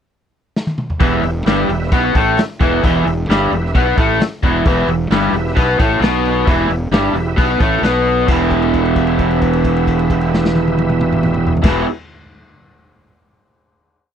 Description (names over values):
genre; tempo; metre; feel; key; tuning
blues rock power trio and southern rock; 132 BPM; 4/4; straight; E minor; A4 = 440 Hz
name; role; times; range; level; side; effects
raw garage drum kit; drums; 0.6-11.8 s; crash cymbal, hi-hat, kick drum, snare drum, toms; -17 LUFS; equal; none
tonewheel organ; sustained chords; 1.0-11.8 s; E4 to E5; -25 LUFS; right 3 dB; slow rotary speaker, overdrive, chorus vibrato
raw garage guitar; riff; 1.0-11.9 s; E2 to B3; -15 LUFS; equal; overdrive
fuzz fingered electric bass; bass; 1.0-11.8 s; E1 to B1; -20 LUFS; equal; overdrive
room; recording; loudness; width
little or no reverb; dry, close 1970s-style studio recording; -13 LUFS; side -8 dB against mid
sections
0.0-1.0 pickup bar; 1.0-8.3 riff; 8.3-11.9 final chord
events
drum fill 0.5-1.0; held note 8.3-11.6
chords
0.0 N.C.; 1.0 Em